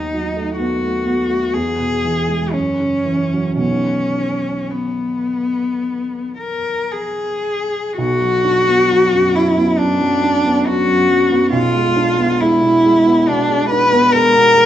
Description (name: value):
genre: classical, romantic duo for cello and grand piano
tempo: 53-70 BPM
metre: 4/4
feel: rubato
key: B major, B minor from 8.0 s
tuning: A4 = 440 Hz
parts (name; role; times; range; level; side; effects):
- rich cello; melody; 0.0-14.7 s; B3 to B4; -15 LUFS; left 1 dB; none
- dark baby grand piano; accompaniment; 0.0-14.7 s; B1 to D4; -19 LUFS; right 2 dB; none
room: wet recital hall reverb, RT60 1.4 s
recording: nothing above 8.0 kHz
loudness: -14 LUFS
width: side -11 dB against mid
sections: 0.0-8.0 A section; 8.0-14.7 B section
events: none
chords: 0.0 B7/D#; 1.5 E; 2.5 F#5; 3.6 B; 8.0 Bm; 11.5 Bdim7